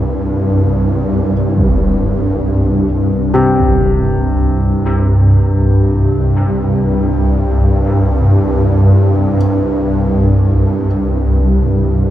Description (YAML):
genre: dark ambient drone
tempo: free time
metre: none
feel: none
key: unclear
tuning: A4 = 436 Hz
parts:
  - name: dark grand piano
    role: arpeggios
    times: 0.0-12.1 s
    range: C3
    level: -19 LUFS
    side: left 2 dB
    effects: dub echo
  - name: swarming drone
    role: drone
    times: 0.0-12.1 s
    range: C2 to G2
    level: -11 LUFS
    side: equal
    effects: built-in reverb
  - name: impact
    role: percussion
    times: 1.6-3.8 s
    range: none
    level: -19 LUFS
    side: equal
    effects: low-pass filter on sfx
room: moderate plate reverb, RT60 2.8 s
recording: echo-heavy mix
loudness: -11 LUFS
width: side -13 dB against mid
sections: 0.0-12.1 A section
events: fade-in on impacts and reversed cymbals 0.0-12.1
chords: 0.0 C5